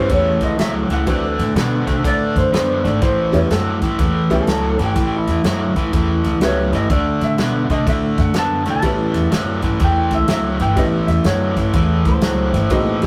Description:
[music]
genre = electric blues shuffle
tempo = 124 BPM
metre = 4/4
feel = swing 65% on 8ths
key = A mixolydian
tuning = A4 = 440 Hz
[part]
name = clean lap steel guitar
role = melody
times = 0.0-12.2 s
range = A4 to A5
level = -24 LUFS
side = equal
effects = none
[part]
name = tack piano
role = accompaniment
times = 0.0-13.1 s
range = E3 to E4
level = -25 LUFS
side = equal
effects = none
[part]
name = overdriven semi-hollow guitar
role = riff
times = 0.0-13.1 s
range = A2 to B3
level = -22 LUFS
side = equal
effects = harmonic tremolo
[part]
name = upright bass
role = bass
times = 0.0-13.1 s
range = G1 to C3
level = -23 LUFS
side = equal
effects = none
[part]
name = natural country drum kit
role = drums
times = 0.1-13.1 s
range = kick drum, ride cymbal, snare drum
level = -25 LUFS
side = equal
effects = none
[part]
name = electric guitar through a small old amp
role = second line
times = 4.3-6.3, 12.1-13.0 s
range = E4 to C5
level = -27 LUFS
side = equal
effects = none
[sound]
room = moderate studio reverb, RT60 0.5 s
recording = rough rehearsal-room recording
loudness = -17 LUFS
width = mono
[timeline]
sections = 0.0-13.1 A section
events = none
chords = 0.0 A9; 1.1 D9; 3.0 A9; 6.9 D9; 8.8 A9

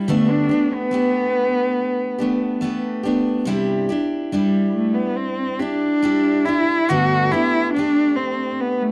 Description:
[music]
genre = acoustic folk duo or small band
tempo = 70 BPM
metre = 4/4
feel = straight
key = G major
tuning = A4 = 444 Hz
[part]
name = warm cello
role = second line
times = 0.0-8.9 s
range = G3 to F#4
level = -21 LUFS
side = equal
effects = none
[part]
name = picked steel-string acoustic guitar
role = accompaniment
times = 0.0-8.9 s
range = G2 to G4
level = -24 LUFS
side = equal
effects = none
[sound]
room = light reverb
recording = dry, close 1970s-style studio recording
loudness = -20 LUFS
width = mono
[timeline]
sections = 0.0-8.9 A section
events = cello solo 0.0-8.9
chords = 0.1 Gadd9; 3.5 Cadd9; 6.9 Gadd9

